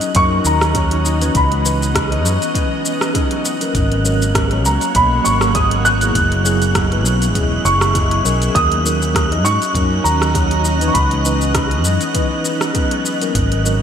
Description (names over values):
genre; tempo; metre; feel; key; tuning
sunset chillout; 100 BPM; 4/4; swing 55% on 16ths; unclear; A4 = 440 Hz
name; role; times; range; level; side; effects
dark baby grand piano; melody; 0.0-12.1 s; A#5 to F#6; -19 LUFS; right 1 dB; lush chorus, ping-pong delay
mellow tine electric piano; accompaniment; 0.0-13.8 s; E3 to B5; -22 LUFS; moving between left 4 dB and right 4 dB; medium stereo tremolo, auto-pan, digital delay
shimmering ambient pad; sustained chords; 0.0-13.8 s; E3 to G#5; -26 LUFS; left 1 dB; chorus, built-in reverb
concert harp; arpeggios; 0.0-13.8 s; G#3 to F#4; -26 LUFS; left 1 dB; vintage 12-bit sampler grit, digital delay
deep house drum kit; drums; 0.0-13.8 s; hi-hat, rim click, shaker; -22 LUFS; equal; gated reverb
wind-like tuned noise texture; texture; 0.0-13.8 s; F#6; -26 LUFS; right 4 dB; built-in reverb, lush chorus
electronic kick drum; drums; 0.1-13.5 s; none; -20 LUFS; equal; none
fretless electric bass; bass; 0.2-13.8 s; E1 to G#2; -18 LUFS; equal; ensemble chorus
room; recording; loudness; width
wet lush hall reverb, RT60 3.1 s; bright 1980s-style digital production; -13 LUFS; side -8 dB against mid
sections
0.0-13.8 A section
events
none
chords
0.0 D#m7; 1.3 C#m9; 3.4 G#m11; 6.1 F#9sus4; 8.5 D#m7; 10.9 C#m9; 13.0 G#m11